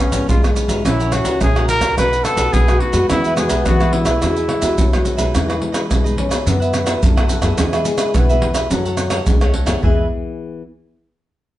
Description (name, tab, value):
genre	samba and choro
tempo	107 BPM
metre	4/4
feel	straight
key	E major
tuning	A4 = 439 Hz
part	breathy trumpet	melody	0.0-5.1 s	C#4 to B4	-20 LUFS	equal	none
part	breathy trombone	second line	0.0-10.1 s	E3 to C#4	-24 LUFS	left 1 dB	none
part	cavaquinho	accompaniment	0.0-10.1 s	D#4 to F#5	-26 LUFS	right 4 dB	none
part	nylon-string guitar	accompaniment	0.0-10.6 s	F#2 to A4	-25 LUFS	left 2 dB	none
part	upright bass	bass	0.1-10.1 s	G#1 to E3	-22 LUFS	equal	none
part	maracas, pandeiro, surdo and tamborim	percussion	0.1-10.0 s	none	-17 LUFS	equal	none
room	wet studio reverb, RT60 0.8 s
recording	band playing live in one room, nothing above 10.9 kHz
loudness	-14 LUFS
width	side -14 dB against mid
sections	0.0-5.3 A section; 5.3-9.8 B section; 9.8-11.6 C section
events	none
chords	0.0 C#7/G#; 0.8 F#7/A#; 2.0 B7; 3.1 Eadd9; 5.3 Emaj7; 6.5 Bsus4/F#; 7.6 E; 8.7 F#m; 9.8 E